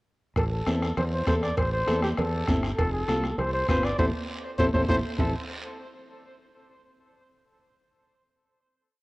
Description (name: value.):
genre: latin, cumbia.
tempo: 199 BPM.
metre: 4/4.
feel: straight.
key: A minor.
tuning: A4 = 440 Hz.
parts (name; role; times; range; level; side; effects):
dark trumpet; melody; 0.4-5.3 s; G4 to D5; -30 LUFS; equal; tape echo.
fingered electric bass; bass; 0.4-5.3 s; F1 to E2; -29 LUFS; equal; none.
bombo; percussion; 0.4-5.3 s; none; -30 LUFS; equal; none.
cowbell and timbales; percussion; 0.4-5.3 s; none; -36 LUFS; right 2 dB; none.
guiro; percussion; 0.4-5.3 s; none; -42 LUFS; right 2 dB; none.
nylon-string guitar; accompaniment; 0.7-5.3 s; C4 to B4; -31 LUFS; left 1 dB; none.
congas; percussion; 0.7-5.3 s; none; -34 LUFS; equal; none.
room: light reverb.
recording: worn, warbling old tape, cassette tape, warbly pitch drift.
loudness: -24 LUFS.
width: side -21 dB against mid.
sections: 0.4-5.2 A section; 5.2-6.4 final chord.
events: band accent 4.0-5.2; drum fill 4.3-5.2.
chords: 0.4 Am; 2.8 F; 4.0 Am.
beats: | 0.36 0.67 0.97 1.27 | 1.57 1.88 2.18 2.48 | 2.78 3.08 3.38 3.69 | 3.99 4.29 4.59 4.89 | 5.19.